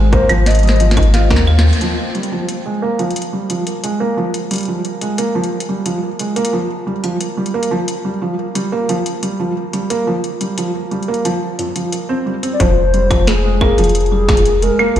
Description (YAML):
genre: IDM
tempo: 89 BPM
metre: 4/4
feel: straight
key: F minor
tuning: A4 = 440 Hz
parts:
  - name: felt-muted upright piano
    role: arpeggios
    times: 0.0-15.0 s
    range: F2 to F4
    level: -18 LUFS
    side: right 2 dB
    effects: low-pass filter, tape echo
  - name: warm sub bass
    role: bass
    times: 0.0-1.7, 12.6-15.0 s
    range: F1 to Eb2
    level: -14 LUFS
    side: equal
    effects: tube saturation
  - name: bubbling stepped-filter texture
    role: texture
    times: 0.0-1.8 s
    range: C4 to C5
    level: -31 LUFS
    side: left 1 dB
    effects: chorus, built-in reverb
  - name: warbly nostalgic lead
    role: melody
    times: 0.1-1.4, 12.5-15.0 s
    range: Ab4 to Eb5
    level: -18 LUFS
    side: left 3 dB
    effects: chorus, ping-pong delay
  - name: booming analog drum machine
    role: drums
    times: 0.1-15.0 s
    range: claves, hi-hat, snare drum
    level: -22 LUFS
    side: left 1 dB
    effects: ping-pong delay
  - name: electronic kick drum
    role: drums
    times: 0.1-1.4, 12.6-14.4 s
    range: none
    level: -17 LUFS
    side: equal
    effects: distortion
room: moderate lush hall reverb, RT60 2.7 s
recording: played on a big sound system in a bare room, large studio reverb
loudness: -14 LUFS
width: side -11 dB against mid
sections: 0.0-1.8 A section; 1.8-12.6 B section; 12.6-15.0 C section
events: drum fill 0.5-1.8; band accent 1.6-1.9; filter sweep on felt piano 1.8-12.6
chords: 0.0 Abadd9; 1.8 Fm; 7.2 Gm7; 12.6 Fm